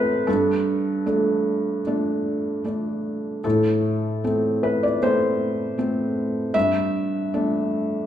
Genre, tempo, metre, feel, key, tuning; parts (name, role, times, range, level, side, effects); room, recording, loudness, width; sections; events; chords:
neoclassical minimalist piano; 77 BPM; 4/4; rubato; A4 = 436 Hz
felt-muted upright piano; solo; 0.0-8.1 s; G2 to E5; -20 LUFS; equal
wet recital hall reverb, RT60 1.4 s; recorded in a church or concert hall; -20 LUFS; side -10 dB against mid
0.0-8.1 A section
0.3 Gsus2; 3.4 Am; 6.5 Gsus2